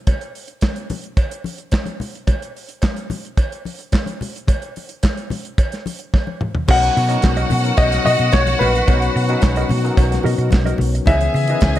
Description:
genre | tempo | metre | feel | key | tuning
disco | 109 BPM | 4/4 | straight | B major | A4 = 440 Hz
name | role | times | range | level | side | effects
warm soul drum kit | drums | 0.1-11.8 s | crash cymbal, handclaps, hi-hat, kick drum, snare drum, toms | -19 LUFS | right 1 dB | none
congas | percussion | 0.1-11.7 s | none | -29 LUFS | left 4 dB | none
cowbell | percussion | 0.1-11.7 s | none | -32 LUFS | right 2 dB | none
warm concert grand piano | melody | 6.7-11.8 s | B4 to F#5 | -20 LUFS | left 3 dB | none
rich symphonic string section | second line | 6.7-11.8 s | F#4 to G#5 | -23 LUFS | right 2 dB | none
mellow electric guitar | accompaniment | 6.7-11.8 s | E4 to D#5 | -28 LUFS | right 4 dB | tremolo
tine electric piano | accompaniment | 6.7-11.8 s | D#3 to C#5 | -24 LUFS | left 6 dB | fast stereo tremolo
hollow-body short-scale fingered electric bass | bass | 6.7-11.8 s | A#1 to C#3 | -19 LUFS | equal | none
room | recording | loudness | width
studio reverb | none | -16 LUFS | side -13 dB against mid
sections
0.0-6.7 A section; 6.7-11.8 B section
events
drum fill 6.1-6.7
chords
0.0 N.C.; 6.7 Bmaj7; 11.1 C#m9

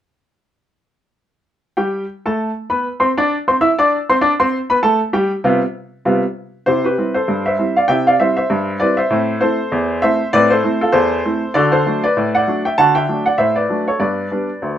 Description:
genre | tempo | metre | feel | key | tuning
ragtime piano | 98 BPM | 2/4 | swing 58% on 16ths | C major | A4 = 440 Hz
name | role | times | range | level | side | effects
clear upright piano | solo | 1.8-14.8 s | D2 to E6 | -14 LUFS | equal | none
room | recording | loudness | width
moderate club reverb, RT60 0.6 s | minimal, uncompressed stereo recording | -14 LUFS | side -10 dB against mid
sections
1.8-6.7 A section; 6.7-14.8 B section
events
none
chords
1.8 C5; 4.2 G7; 6.7 C; 9.1 Am; 11.6 D7; 14.0 G

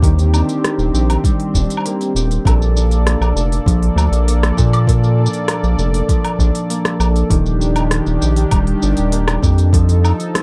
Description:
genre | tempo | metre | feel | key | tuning
folktronica | 99 BPM | 4/4 | straight | Bb major | A4 = 440 Hz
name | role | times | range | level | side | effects
warm analog pad | sustained chords | 0.0-10.4 s | Eb3 to D5 | -26 LUFS | equal | chorus, tremolo, plate reverb
concert harp | arpeggios | 0.0-10.4 s | Bb2 to A4 | -23 LUFS | equal | delay, plate reverb
round analog bass | bass | 0.0-10.1 s | Eb1 to Bb2 | -17 LUFS | equal | none
electronic kick drum | drums | 0.0-9.8 s | none | -18 LUFS | equal | none
organic electronic drum kit | drums | 0.0-10.4 s | hi-hat, rim click, shaker, woodblock | -25 LUFS | equal | none
room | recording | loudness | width
light reverb | dark, warm production | -15 LUFS | mono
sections
0.0-10.4 A section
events
none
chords
0.0 Ebmaj7; 2.5 Bbmaj7; 7.3 Ebmaj7; 9.7 F7

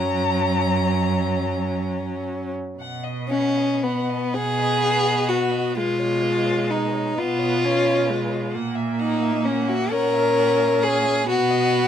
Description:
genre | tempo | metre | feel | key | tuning
classical, slow romantic movement for string quartet | 37-45 BPM (dotted quarters) | 6/8 | rubato | B major | A4 = 441 Hz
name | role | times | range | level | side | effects
dark violin | melody | 0.0-11.9 s | B4 to A#5 | -31 LUFS | left 8 dB | none
warm violin | second line | 0.0-11.9 s | B3 to A#4 | -22 LUFS | left 3 dB | none
rich viola | accompaniment | 0.0-11.9 s | F#3 to C#4 | -25 LUFS | right 3 dB | none
warm cello | bass | 0.0-11.9 s | F#2 to B2 | -27 LUFS | right 4 dB | none
room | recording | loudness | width
light reverb | minimal, uncompressed stereo recording | -19 LUFS | side -9 dB against mid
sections
0.0-2.8 A section; 2.8-11.9 B section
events
none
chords
0.0 F#; 2.8 B; 5.8 C#7/B; 8.5 F#7/A#; 11.3 B

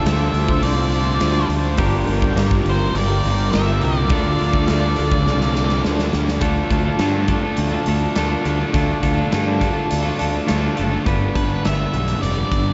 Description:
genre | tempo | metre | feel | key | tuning
rock, shoegaze and dream pop | 104 BPM | 4/4 | straight | D minor | A4 = 437 Hz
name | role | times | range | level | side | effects
octave-fuzz lead guitar | melody | 0.0-5.8, 11.4-12.7 s | B4 to E5 | -29 LUFS | equal | distortion, tape echo
warm analog pad | sustained chords | 0.0-6.4 s | F4 to D6 | -30 LUFS | equal | chorus
overdriven electric guitar | riff | 0.0-12.7 s | D3 to B4 | -26 LUFS | equal | reverse reverb
thick fuzz guitar | riff | 0.0-12.7 s | G2 to D4 | -26 LUFS | equal | distortion, analog chorus
fuzz fingered electric bass | bass | 0.0-12.7 s | F1 to G2 | -24 LUFS | equal | overdrive
huge arena drum kit | drums | 0.1-12.7 s | hi-hat, kick drum, snare drum | -26 LUFS | equal | none
room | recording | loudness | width
wet huge ambient reverb, RT60 8.1 s | dreamy mix soaked in reverb, nothing above 7.7 kHz | -19 LUFS | mono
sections
0.0-6.4 A section; 6.4-11.1 B section; 11.1-12.7 C section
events
drum fill 5.3-6.4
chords
0.0 Dm7; 1.8 Gm7; 4.1 Dm; 11.1 G

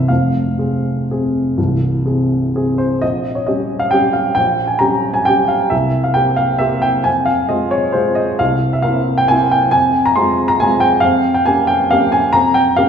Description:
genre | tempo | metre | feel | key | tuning
classical, piano waltz | 119-144 BPM | 3/4 | rubato | F minor | A4 = 440 Hz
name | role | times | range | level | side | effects
warm upright piano | solo | 0.0-12.9 s | C1 to C6 | -13 LUFS | equal | none
room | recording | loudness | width
wet recital hall reverb, RT60 1.6 s | recorded in a church or concert hall | -13 LUFS | side -7 dB against mid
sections
0.0-3.0 A section; 3.0-12.9 B section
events
none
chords
0.1 Fm; 3.0 Gdim/Bb; 5.7 C5; 7.1 Fm; 8.4 C7; 9.7 Fm; 11.0 Gm7b5/F

